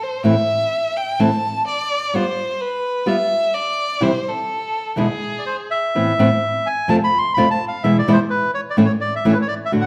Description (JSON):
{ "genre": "tango", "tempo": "127 BPM", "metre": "4/4", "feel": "rubato", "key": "A harmonic minor from 5.9 s", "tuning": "A4 = 441 Hz", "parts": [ { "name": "warm violin", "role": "second line", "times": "0.0-5.7 s", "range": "G#4 to A5", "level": "-23 LUFS", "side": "equal", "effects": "none" }, { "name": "nylon-string guitar", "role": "accompaniment", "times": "0.2-9.9 s", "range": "E2 to F#4", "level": "-20 LUFS", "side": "equal", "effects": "none" }, { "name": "bandoneon", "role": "melody", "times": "5.4-9.9 s", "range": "B4 to C6", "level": "-22 LUFS", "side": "equal", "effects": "none" } ], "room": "wet large studio reverb, RT60 1.2 s", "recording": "none", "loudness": "-19 LUFS", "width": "mono", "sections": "0.0-5.9 A section; 5.9-9.9 B section", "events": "violin solo 0.0-5.9", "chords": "0.2 Am; 2.1 G7; 4.0 C; 5.0 E7; 5.9 Amadd9; 6.9 F; 7.8 E; 8.8 A", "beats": "| 0.25 0.72 1.20 1.67 | 2.14 2.60 3.07 3.54 | 4.01 4.48 4.96 5.44 | 5.93 6.41 6.88 7.35 | 7.82 8.29 8.76 9.23 | 9.70" }